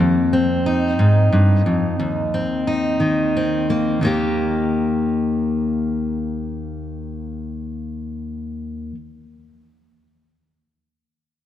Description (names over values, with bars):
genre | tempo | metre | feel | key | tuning
folk | 60 BPM (dotted quarters) | 6/8 | straight | Eb major | A4 = 439 Hz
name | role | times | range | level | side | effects
fingerpicked steel-string acoustic guitar | accompaniment | 0.0-9.0 s | Eb2 to G4 | -18 LUFS | left 1 dB | none
room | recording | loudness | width
wet concert hall reverb, RT60 2.1 s | dark, warm production | -17 LUFS | side -11 dB against mid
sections
0.0-4.0 A section; 4.0-8.1 B section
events
none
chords
0.0 Fm; 2.0 Cm7/Eb; 4.0 Eb